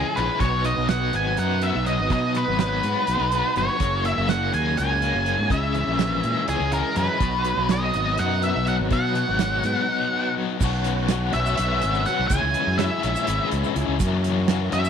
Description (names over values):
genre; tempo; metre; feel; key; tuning
psychedelic rock; 247 BPM (eighths); 7/8; straight; unclear; A4 = 441 Hz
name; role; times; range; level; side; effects
octave-fuzz lead guitar; melody; 0.0-14.9 s; G#4 to G#5; -24 LUFS; right 1 dB; distortion, slapback echo
bright tonewheel organ; sustained chords; 0.0-14.9 s; F#3 to F#5; -32 LUFS; right 15 dB; slow rotary speaker, chorus vibrato
overdriven electric guitar; riff; 0.0-14.9 s; F#2 to F#4; -27 LUFS; left 13 dB; tremolo
fuzz fingered electric bass; bass; 0.0-14.9 s; F#1 to B2; -25 LUFS; equal; overdrive
damped 70s drum kit; drums; 0.2-14.8 s; crash cymbal, hi-hat, kick drum, snare drum; -27 LUFS; right 4 dB; none
tube shaker; percussion; 10.6-14.9 s; none; -38 LUFS; right 18 dB; none
room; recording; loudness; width
light reverb, small room ambience; 1960s-style stereo with parts hard left and right; -20 LUFS; side -7 dB against mid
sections
0.0-10.6 A section; 10.6-14.9 B section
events
break 9.9-10.6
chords
0.4 B; 3.8 F#add9; 5.5 C#m; 7.2 B; 10.6 Bsus2; 12.3 C#m; 14.0 F#7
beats
0.16 | 0.40 0.65 0.89 1.13 1.38 1.62 1.86 | 2.10 2.35 2.59 2.83 3.08 3.32 3.56 | 3.81 4.05 4.29 4.53 4.78 5.02 5.26 | 5.51 5.75 5.99 6.24 6.48 6.72 6.96 | 7.21 7.45 7.70 7.94 8.18 8.43 8.67 | 8.91 9.15 9.40 9.64 9.88 10.13 10.37 | 10.61 10.86 11.10 11.34 11.58 11.83 12.07 | 12.31 12.55 12.79 13.04 13.28 13.52 13.76 | 14.00 14.24 14.49 14.73